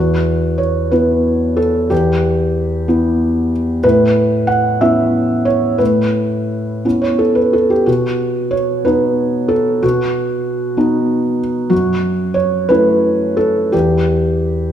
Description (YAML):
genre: neoclassical minimalist piano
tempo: 56-65 BPM (dotted quarters)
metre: 6/8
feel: rubato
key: E dorian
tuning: A4 = 437 Hz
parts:
  - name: felt-muted upright piano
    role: solo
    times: 0.0-14.7 s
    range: E2 to F#5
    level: -13 LUFS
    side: equal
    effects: none
room: wet recital hall reverb, RT60 1.4 s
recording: recorded in a church or concert hall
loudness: -13 LUFS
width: side -9 dB against mid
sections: 0.0-14.7 A section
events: none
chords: 0.0 Emadd9; 3.8 Aadd9; 7.9 B; 11.7 F#m7; 13.7 Em